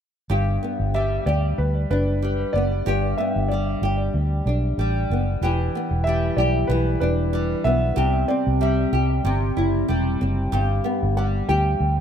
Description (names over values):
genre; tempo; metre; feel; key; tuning
pop; 94 BPM; 4/4; swing 55% on 16ths; G major; A4 = 440 Hz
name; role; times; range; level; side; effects
flamenco guitar; accompaniment; 0.3-12.0 s; G2 to G4; -24 LUFS; left 1 dB; double-tracked left and right
vintage muted fingered electric bass; bass; 0.3-12.0 s; E1 to D2; -22 LUFS; equal; none
warm upright piano; melody; 0.9-12.0 s; B4 to G5; -27 LUFS; right 1 dB; tape echo
room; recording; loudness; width
light reverb, studio reverb; rough home demo mix; -20 LUFS; side -8 dB against mid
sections
0.3-12.0 A section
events
none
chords
0.3 G; 5.4 Em7; 8.0 C; 10.5 G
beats
| 0.30 0.94 1.58 2.22 | 2.86 3.50 4.14 4.78 | 5.42 6.06 6.70 7.34 | 7.97 8.61 9.25 9.89 | 10.53 11.16 11.80